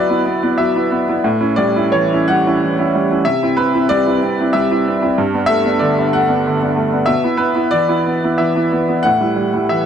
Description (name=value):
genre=neoclassical minimalist piano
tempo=92 BPM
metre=3/4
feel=rubato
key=unclear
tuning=A4 = 442 Hz
part: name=clear upright piano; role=solo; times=0.0-9.9 s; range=G2 to F#5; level=-13 LUFS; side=equal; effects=none
room=light reverb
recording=dark, warm production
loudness=-13 LUFS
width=side -8 dB against mid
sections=0.0-9.9 A section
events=none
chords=0.0 Bsus4; 1.2 A7 (rootless); 3.2 C; 5.2 Gadd9; 7.1 Bsus4; 9.0 A7(no3)